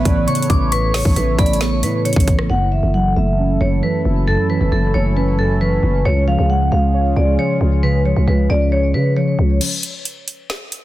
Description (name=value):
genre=hip hop, trap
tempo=135 BPM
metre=4/4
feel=half-time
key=F# minor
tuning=A4 = 440 Hz
part: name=vibraphone with medium hard mallets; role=melody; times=0.0-9.6 s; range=A4 to F#5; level=-22 LUFS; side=left 1 dB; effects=low-pass filter, digital delay
part: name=soft synth bell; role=second line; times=0.0-2.0 s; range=B5 to D6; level=-26 LUFS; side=left 2 dB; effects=chorus, phaser, digital delay
part: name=muted felt-like synth keys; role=accompaniment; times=0.0-9.6 s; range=F#2 to C#5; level=-20 LUFS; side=right 2 dB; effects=chorus, low-pass filter
part: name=sweeping resonant pad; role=sustained chords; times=0.0-9.6 s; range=C#3 to C#5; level=-27 LUFS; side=right 1 dB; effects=chorus
part: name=growling 808-style bass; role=bass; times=0.0-9.6 s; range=F#1 to C#3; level=-17 LUFS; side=equal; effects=none
part: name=trap drum kit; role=drums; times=0.1-2.5, 9.6-10.8 s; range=crash cymbal, hi-hat, kick drum, rim click, snare drum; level=-19 LUFS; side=equal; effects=soft clipping on snare
room=little or no reverb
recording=dense, heavily limited modern master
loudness=-14 LUFS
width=side -15 dB against mid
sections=0.0-2.5 A section; 2.5-9.6 B section; 9.6-10.8 C section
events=break 9.6-10.8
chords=0.0 Aadd9; 2.5 F#m7; 6.1 C#; 9.6 N.C.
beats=0.28 | 0.72 1.16 1.61 2.05 | 2.50 2.94 3.39 3.83 | 4.28 4.72 5.16 5.61 | 6.05 6.50 6.94 7.39 | 7.83 8.28 8.72 9.16 | 9.61 10.05 10.50